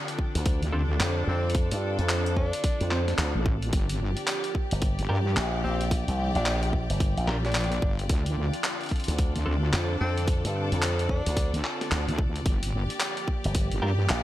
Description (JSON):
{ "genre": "glitch hop", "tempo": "110 BPM", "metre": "4/4", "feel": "swing 62% on 16ths", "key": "G minor", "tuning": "A4 = 439 Hz", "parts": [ { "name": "warbly tape-like pad", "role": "sustained chords", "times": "0.0-14.2 s", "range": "D3 to G4", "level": "-36 LUFS", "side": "right 1 dB", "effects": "chorus, built-in reverb, phaser, sidechain pumping" }, { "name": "bright symphonic string section", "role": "texture", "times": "0.0-14.2 s", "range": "D4 to G5", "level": "-36 LUFS", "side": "left 2 dB", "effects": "sidechain pumping" }, { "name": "boom bap sampler-style drum kit", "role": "drums", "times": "0.1-14.2 s", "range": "handclaps, hi-hat, snare drum", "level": "-32 LUFS", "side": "equal", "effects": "none" }, { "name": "electronic kick drum", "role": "drums", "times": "0.2-13.7 s", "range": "none", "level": "-27 LUFS", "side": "equal", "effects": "none" }, { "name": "slap bass with an envelope filter", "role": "bass", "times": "0.4-14.2 s", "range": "G1 to G2", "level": "-27 LUFS", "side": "equal", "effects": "none" }, { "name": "wobble bass", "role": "bass", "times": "0.6-14.1 s", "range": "G1 to G2", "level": "-27 LUFS", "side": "equal", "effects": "chorus, tube saturation" }, { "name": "clean electric guitar", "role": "stabs", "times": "0.7-9.5, 13.8-13.9 s", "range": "C4 to Bb4", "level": "-34 LUFS", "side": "equal", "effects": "vintage 12-bit sampler grit, sidechain pumping" }, { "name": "breathy tenor saxophone", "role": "melody", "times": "1.3-11.6 s", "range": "C4 to D4", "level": "-36 LUFS", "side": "equal", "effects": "tape echo" } ], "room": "little or no reverb", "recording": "dry, gritty hardware recording", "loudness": "-24 LUFS", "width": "side -14 dB against mid", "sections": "0.0-14.2 A section", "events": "none", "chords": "0.0 Dm7; 3.7 Gm7; 8.1 Dm7; 12.5 Gm7" }